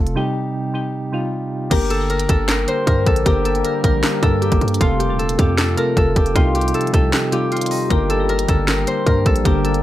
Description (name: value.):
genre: hip hop, trap.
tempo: 155 BPM.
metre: 4/4.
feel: half-time.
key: G minor.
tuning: A4 = 440 Hz.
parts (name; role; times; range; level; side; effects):
soft electric-piano-like synth keys; accompaniment; 0.0-9.8 s; C3 to Bb4; -22 LUFS; left 1 dB; chorus, tremolo.
hard-hitting 808-style bass; bass; 0.0-9.8 s; Eb1 to G2; -21 LUFS; equal; none.
trap drum kit; drums; 0.1-9.8 s; crash cymbal, handclaps, hi-hat, kick drum, snare drum; -19 LUFS; equal; none.
Celtic harp; melody; 1.7-9.8 s; Eb4 to C5; -21 LUFS; left 1 dB; none.
deep dark ambient pad; sustained chords; 2.7-9.8 s; C3 to G4; -27 LUFS; right 1 dB; chorus, built-in reverb.
room: little or no reverb.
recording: none.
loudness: -15 LUFS.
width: side -14 dB against mid.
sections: 0.0-1.7 A section; 1.7-9.8 B section.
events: break 0.2-1.7, 7.1-7.9.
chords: 0.2 Cm; 1.7 Gm; 4.8 F; 6.4 Cm; 7.9 Gm.